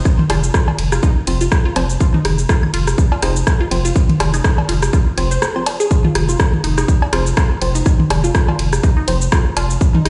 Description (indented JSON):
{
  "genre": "minimal techno",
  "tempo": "123 BPM",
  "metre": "4/4",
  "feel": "swing 56% on 16ths",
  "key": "unclear",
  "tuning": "A4 = 440 Hz",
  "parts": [
    { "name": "electronic kick drum", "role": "drums", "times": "0.1-9.9 s", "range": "none", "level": "-16 LUFS", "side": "equal", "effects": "none" },
    { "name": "house drum kit", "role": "drums", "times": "0.1-10.1 s", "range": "hi-hat, ride cymbal, rim click, shaker", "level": "-25 LUFS", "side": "equal", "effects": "none" },
    { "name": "booming analog drum machine", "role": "percussion", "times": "0.1-10.1 s", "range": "claves, cowbell, rim click, toms", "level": "-23 LUFS", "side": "equal", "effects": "digital delay" },
    { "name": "resonant blip pluck", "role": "riff", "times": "0.3-10.1 s", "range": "Eb4 to C5", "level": "-27 LUFS", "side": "equal", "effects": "phaser, sidechain pumping, digital delay" },
    { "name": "round analog bass", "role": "bass", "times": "0.3-10.1 s", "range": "F1", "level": "-20 LUFS", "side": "equal", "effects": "sidechain pumping" },
    { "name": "wavetable chord stab", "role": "stabs", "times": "1.3-9.2 s", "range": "F3 to C5", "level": "-29 LUFS", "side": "equal", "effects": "digital delay" }
  ],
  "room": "light reverb, digital ambience",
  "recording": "played on a big sound system in a bare room, stone room reverb, nothing above 10.8 kHz",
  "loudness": "-16 LUFS",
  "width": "mono",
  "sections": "0.0-10.1 A section",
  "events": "kick drops out 5.4-5.9",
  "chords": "0.0 F5"
}